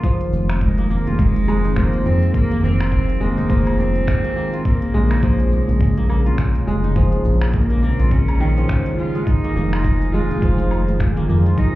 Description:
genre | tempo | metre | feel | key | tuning
organic downtempo | 104 BPM | 4/4 | swing 59% on 16ths | F minor | A4 = 440 Hz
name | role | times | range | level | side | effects
warm analog pad | sustained chords | 0.0-11.8 s | Db3 to C5 | -26 LUFS | right 2 dB | wide subtle chorus, sidechain pumping
kora | arpeggios | 0.0-11.8 s | Eb3 to F4 | -25 LUFS | equal | ping-pong delay
electronic kick drum | drums | 0.0-11.7 s | none | -20 LUFS | equal | overdrive
organic electronic drum kit | drums | 0.0-11.7 s | finger snaps, hi-hat, shaker, woodblock | -33 LUFS | right 1 dB | overdrive
round analog bass | bass | 0.3-11.8 s | F1 to F2 | -18 LUFS | equal | tube saturation
rich cello | melody | 0.6-11.8 s | Ab3 to F4 | -25 LUFS | right 1 dB | ping-pong delay
congas | percussion | 9.6-11.6 s | none | -29 LUFS | left 2 dB | none
room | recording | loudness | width
digital ambience | heard muffled through a wall, club reverb, EQ | -15 LUFS | side -16 dB against mid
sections
0.0-11.8 A section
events
none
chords
0.0 Fm7; 4.7 Bbm7; 9.3 Fm7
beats
| 0.04 0.61 1.19 1.77 | 2.34 2.92 3.50 4.08 | 4.65 5.23 5.81 6.38 | 6.96 7.54 8.11 8.69 | 9.27 9.84 10.42 11.00 | 11.57

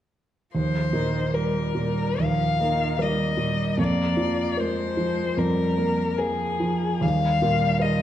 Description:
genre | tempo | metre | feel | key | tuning
classical, slow romantic movement for piano trio | 67-77 BPM | 4/4 | rubato | Eb major | A4 = 441 Hz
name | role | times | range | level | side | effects
warm cello | second line | 0.5-8.0 s | Eb3 to Bb3 | -29 LUFS | right 3 dB | none
warm concert grand piano | accompaniment | 0.5-8.0 s | Eb2 to Bb4 | -24 LUFS | right 1 dB | none
rich violin | melody | 0.6-8.0 s | Ab4 to F5 | -26 LUFS | left 6 dB | none
room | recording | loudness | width
wet recital hall reverb, RT60 1.5 s | dark, warm production | -21 LUFS | side -11 dB against mid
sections
0.5-8.0 A section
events
none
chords
0.5 Eb; 3.8 Bb7/F; 7.0 Eb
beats
| 0.54 1.33 2.19 2.99 | 3.78 4.58 5.37 6.18 | 7.03 7.82

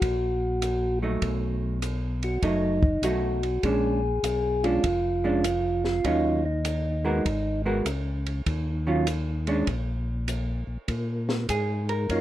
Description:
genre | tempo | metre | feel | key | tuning
soul jazz organ trio | 99 BPM | 4/4 | swing 66% on 8ths | Eb minor | A4 = 440 Hz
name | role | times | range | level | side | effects
percussive tonewheel organ | melody | 0.0-7.6, 12.1-12.2 s | Gb3 to Ab4 | -26 LUFS | equal | slow rotary speaker
tonewheel organ | bass | 0.0-12.2 s | F1 to Bb2 | -28 LUFS | equal | chorus vibrato, slow rotary speaker
compact cocktail drum kit | drums | 0.0-12.2 s | hi-hat, kick drum, ride cymbal, snare drum | -31 LUFS | equal | none
vintage hollow-body jazz guitar | accompaniment | 1.0-12.2 s | Eb3 to Bb4 | -27 LUFS | right 2 dB | none
room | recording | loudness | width
light reverb | rough home demo mix | -24 LUFS | side -13 dB against mid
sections
0.0-10.9 A section; 10.9-12.2 B section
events
hollow-body jazz guitar solo 10.9-12.2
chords
0.0 Ebm; 1.2 B7; 3.6 Bb7#9; 6.0 Ebm9; 7.3 Abm9; 8.5 Ebm9; 9.7 N.C.; 10.9 Ebm (rootless)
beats
0.01 0.62 | 1.22 1.82 2.42 3.03 | 3.63 4.23 4.84 5.44 | 6.05 6.65 7.25 7.86 | 8.46 9.07 9.67 10.28 | 10.88 11.49 12.09

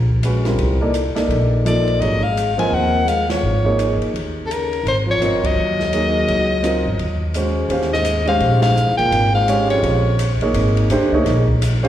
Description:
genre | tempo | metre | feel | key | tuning
modal jazz | 169 BPM | 4/4 | swing 62% on 8ths | Eb mixolydian from 7.7 s | A4 = 443 Hz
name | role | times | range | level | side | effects
upright bass | bass | 0.0-11.9 s | G1 to Eb2 | -20 LUFS | equal | none
open jazz drum kit | drums | 0.1-11.9 s | hi-hat, kick drum, ride cymbal, snare drum | -28 LUFS | left 1 dB | none
warm grand piano | accompaniment | 0.2-11.9 s | F3 to F5 | -20 LUFS | right 1 dB | slapback echo
bright soprano saxophone | melody | 1.7-10.4 s | A4 to Ab5 | -20 LUFS | left 2 dB | slapback echo
growling trombone | second line | 1.7-10.4 s | F2 to C4 | -24 LUFS | right 1 dB | slapback echo
room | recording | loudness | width
light reverb, studio ambience | live gig heard through the venue's PA, recital hall reverb | -15 LUFS | side -11 dB against mid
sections
0.0-7.7 A section; 7.7-11.9 B section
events
band accent 3.3, 5.4, 8.6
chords
0.0 F13sus4; 2.0 Ab13sus4; 7.7 Eb13sus4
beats
0.23 | 0.58 0.94 1.29 1.65 | 2.01 2.36 2.72 3.07 | 3.43 3.79 4.14 4.50 | 4.85 5.21 5.57 5.92 | 6.28 6.63 6.99 7.35 | 7.70 8.06 8.41 8.77 | 9.12 9.48 9.84 10.19 | 10.55 10.90 11.26 11.61

